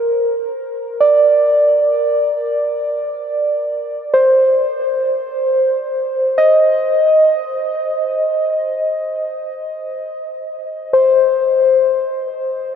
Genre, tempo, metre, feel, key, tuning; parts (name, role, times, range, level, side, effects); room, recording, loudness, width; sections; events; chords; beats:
ambient; free time; Bb major; A4 = 442 Hz
muted felt-like synth keys; solo; 0.0-12.8 s; Bb4 to Eb5; -14 LUFS; equal; chorus, diffuse ambient delay
wet huge ambient reverb, RT60 8.1 s; -13 LUFS; side -8 dB against mid
0.0-12.8 A section
0.0 Bbsus2
free time